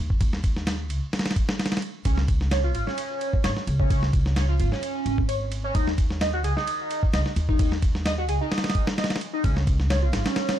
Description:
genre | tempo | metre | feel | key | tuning
breakbeat, breaks | 130 BPM | 4/4 | swing 54% on 16ths | unclear | A4 = 435 Hz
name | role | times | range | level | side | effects
upright bass | bass | 0.0-10.2 s | Ab1 to Eb2 | -25 LUFS | equal | none
dusty soul sampler-style drum kit | drums | 0.1-10.6 s | kick drum, ride cymbal, snare drum | -25 LUFS | equal | small room ambience
overdriven synth lead | riff | 2.1-10.6 s | Db4 to Eb5 | -28 LUFS | right 1 dB | phaser, wide subtle chorus, tape echo
room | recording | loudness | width
light reverb | dark, warm production | -22 LUFS | side -11 dB against mid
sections
0.0-10.6 A section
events
none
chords
0.0 N.C.; 2.1 Db; 5.7 N.C.; 9.4 Db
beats
| 0.21 0.67 1.13 1.59 | 2.06 2.52 2.98 3.44 | 3.90 4.36 4.82 5.29 | 5.75 6.21 6.67 7.13 | 7.59 8.05 8.52 8.98 | 9.44 9.90 10.36

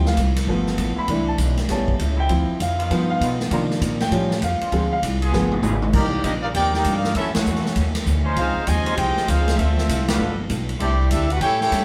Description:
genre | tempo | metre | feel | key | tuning
jazz, big band swing | 198 BPM | 4/4 | swing 63% on 8ths | unclear | A4 = 441 Hz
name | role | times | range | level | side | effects
vintage hollow-body jazz guitar | accompaniment | 0.0-11.8 s | F#2 to A4 | -35 LUFS | equal | none
warm baby grand piano | accompaniment | 0.0-5.6 s | Eb3 to B5 | -25 LUFS | equal | none
bright trombone section | sustained chords | 0.0-11.3 s | D3 to C5 | -33 LUFS | equal | none
upright bass | bass | 0.0-11.8 s | G1 to C3 | -25 LUFS | equal | none
swinging big-band drum kit | drums | 0.1-11.8 s | crash cymbal, hi-hat, kick drum, ride cymbal, snare drum, toms | -28 LUFS | equal | none
clear trumpet section | melody | 5.9-11.8 s | A3 to Ab5 | -26 LUFS | equal | none
clear trombone section | second line | 5.9-11.8 s | C3 to G4 | -32 LUFS | equal | none
room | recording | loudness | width
moderate studio reverb, RT60 0.6 s | band playing live in one room | -21 LUFS | mono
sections
0.0-5.9 A section; 5.9-11.8 B section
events
grand piano solo 0.0-5.9; drum fill 5.3-5.9; band accent 7.3, 10.0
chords
0.5 G9; 1.1 C69; 1.7 A7; 2.3 Dm9; 2.9 Gaug7; 3.5 Cm11; 4.1 A7b13; 4.7 Dm7b5; 5.3 G7b9; 5.9 Cm11; 7.2 F#m7; 7.8 B9; 8.4 Dbmaj9; 9.6 Dm11; 10.2 G9; 10.8 C69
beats
0.17 0.47 0.78 | 1.08 1.39 1.69 1.99 | 2.29 2.60 2.90 3.21 | 3.51 3.81 4.12 4.42 | 4.72 5.03 5.33 5.64 | 5.94 6.24 6.55 6.85 | 7.16 7.46 7.76 8.07 | 8.37 8.67 8.98 9.28 | 9.58 9.89 10.19 10.49 | 10.80 11.10 11.40 11.71

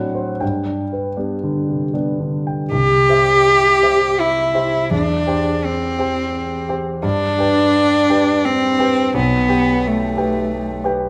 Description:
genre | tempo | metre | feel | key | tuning
classical, romantic duo for cello and grand piano | 75-90 BPM | 3/4 | rubato | C major | A4 = 443 Hz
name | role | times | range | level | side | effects
warm concert grand piano | accompaniment | 0.0-11.1 s | B1 to G5 | -22 LUFS | equal | none
rich cello | melody | 2.7-10.9 s | A3 to G4 | -18 LUFS | equal | none
room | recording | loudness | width
wet recital hall reverb, RT60 1.4 s | none | -17 LUFS | mono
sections
0.0-2.7 A section; 2.7-11.1 B section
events
none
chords
0.4 G; 2.7 C; 4.9 C/E; 7.0 G; 9.1 G/B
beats
| 0.41 1.20 1.96 | 2.73 3.46 4.19 | 4.91 5.63 6.33 | 7.04 7.75 8.45 | 9.14 9.84 10.52

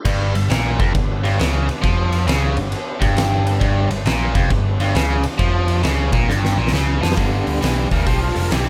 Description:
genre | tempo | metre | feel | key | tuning
blues rock power trio and southern rock | 135 BPM | 4/4 | swing 66% on 8ths | G mixolydian | A4 = 441 Hz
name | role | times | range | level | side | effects
tonewheel organ | sustained chords | 0.0-8.7 s | G3 to C5 | -32 LUFS | equal | slow rotary speaker, chorus vibrato
biting overdriven guitar | riff | 0.1-8.7 s | F2 to F3 | -24 LUFS | equal | none
overdriven picked electric bass | bass | 0.1-8.7 s | F1 to F2 | -22 LUFS | equal | none
oversized low-tuned drum kit | drums | 0.1-8.7 s | crash cymbal, hi-hat, kick drum, ride cymbal, snare drum | -23 LUFS | equal | none
room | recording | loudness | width
little or no reverb | none | -18 LUFS | mono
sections
0.1-7.2 A section; 7.2-8.7 B section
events
drum fill 6.3-7.2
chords
0.1 G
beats
| 0.06 0.51 0.95 1.40 | 1.84 2.29 2.73 3.18 | 3.62 4.06 4.51 4.95 | 5.40 5.84 6.29 6.73 | 7.18 7.62 8.07 8.52

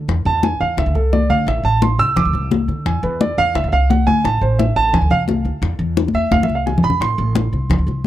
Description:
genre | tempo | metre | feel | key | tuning
latin, Cuban son and guajira | 173 BPM | 4/4 | straight | A harmonic minor | A4 = 444 Hz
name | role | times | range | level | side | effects
upright bass | bass | 0.0-8.1 s | A1 to D3 | -18 LUFS | equal | none
bongos | percussion | 0.1-8.1 s | none | -25 LUFS | left 10 dB | none
congas | percussion | 0.1-8.1 s | none | -19 LUFS | left 3 dB | none
warm concert grand piano | arpeggios | 0.3-8.0 s | A4 to E6 | -19 LUFS | right 3 dB | none
room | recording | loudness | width
small room ambience | dry, close 1970s-style studio recording | -14 LUFS | side -13 dB against mid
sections
0.0-8.1 A section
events
grand piano solo 0.0-8.1; drum fill 6.0-7.0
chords
0.1 Eadd11; 0.8 C69; 1.5 Am; 2.2 Csus2; 2.9 E7b9; 3.6 Cadd9; 4.2 Am; 4.9 Fm6/C; 5.6 N.C.; 6.3 E(b9b13); 7.0 Am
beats
| 0.09 0.44 0.78 1.13 | 1.48 1.82 2.17 2.51 | 2.86 3.21 3.55 3.90 | 4.25 4.59 4.94 5.28 | 5.63 5.98 6.32 6.67 | 7.01 7.36 7.71 8.05

